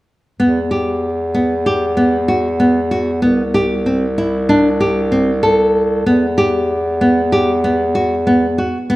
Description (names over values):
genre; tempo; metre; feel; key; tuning
contemporary instrumental, contemporary; 191 BPM (eighths); 9/8; straight; E minor; A4 = 440 Hz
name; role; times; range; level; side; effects
nylon-string guitar; arpeggios; 0.4-9.0 s; B3 to A4; -15 LUFS; equal; none
clear bass clarinet; bass; 0.4-9.0 s; C2 to E2; -18 LUFS; equal; none
room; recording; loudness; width
moderate recital hall reverb, RT60 1.8 s; none; -13 LUFS; side -18 dB against mid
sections
0.4-9.0 A section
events
none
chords
0.4 Emadd9; 3.2 C5; 6.1 Emadd9